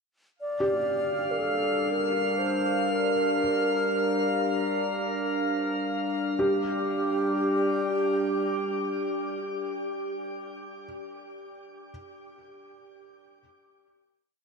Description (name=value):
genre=ambient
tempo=free time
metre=none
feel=none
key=G minor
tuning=A4 = 440 Hz
part: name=alto flute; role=melody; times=0.4-10.2 s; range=G4 to D5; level=-30 LUFS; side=equal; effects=diffuse ambient delay
part: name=analog drone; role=drone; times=1.1-10.3 s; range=G3 to D4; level=-31 LUFS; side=left 1 dB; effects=chorus
part: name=drifting glass-harmonics texture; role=texture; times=0.7-6.4 s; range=F5 to F6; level=-32 LUFS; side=right 1 dB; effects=chorus, built-in reverb
part: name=felt-muted upright piano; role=arpeggios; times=0.6-11.9 s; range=G4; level=-35 LUFS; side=right 1 dB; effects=diffuse ambient delay
room=wet shimmer reverb, RT60 8.0 s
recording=dark, warm production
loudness=-25 LUFS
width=side -4 dB against mid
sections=0.4-6.4 A section; 6.4-9.4 final chord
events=none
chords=0.4 G5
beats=free time